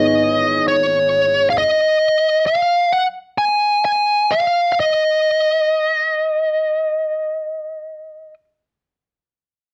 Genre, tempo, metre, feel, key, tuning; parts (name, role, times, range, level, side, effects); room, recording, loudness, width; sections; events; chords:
pop; 52-67 BPM; 4/4; straight; A4 = 440 Hz
smooth overdriven lead guitar; melody; 0.0-8.3 s; Db5 to Ab5; -17 LUFS; equal; slapback echo
felt-muted upright piano; accompaniment; 0.0-1.6 s; Ab1 to Db5; -23 LUFS; equal
light reverb; dry, close 1970s-style studio recording; -17 LUFS; mono
0.0-9.5 A section
slowing down 1.6-9.5
0.0 Abm; 1.6 N.C.